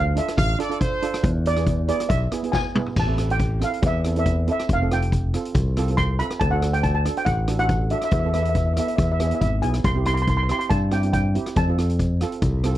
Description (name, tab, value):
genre	calypso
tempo	139 BPM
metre	4/4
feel	swing 53% on 16ths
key	A minor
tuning	A4 = 435 Hz
part	steel pan	melody	0.0-12.8 s	D5 to C6	-25 LUFS	equal	none
part	steel pan	accompaniment	0.0-12.7 s	B3 to A4	-29 LUFS	right 6 dB	none
part	fingered electric bass	bass	0.0-12.8 s	F1 to G2	-22 LUFS	equal	none
part	street-band drum kit	drums	0.2-12.8 s	crash cymbal, hi-hat, kick drum, rim click, snare drum, toms	-25 LUFS	equal	none
part	brilliant horn section	second line	0.4-1.3 s	C5 to F5	-26 LUFS	right 2 dB	none
room	little or no reverb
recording	dry, close 1970s-style studio recording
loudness	-19 LUFS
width	side -14 dB against mid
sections	0.0-3.0 A section; 3.0-12.8 B section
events	steel pan solo 0.0-3.0; drum fill 2.5-3.0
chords	0.0 Dm7; 1.2 E; 3.0 Am; 4.7 Fadd9; 6.4 D; 8.1 Esus4; 9.0 E; 9.9 C; 11.6 F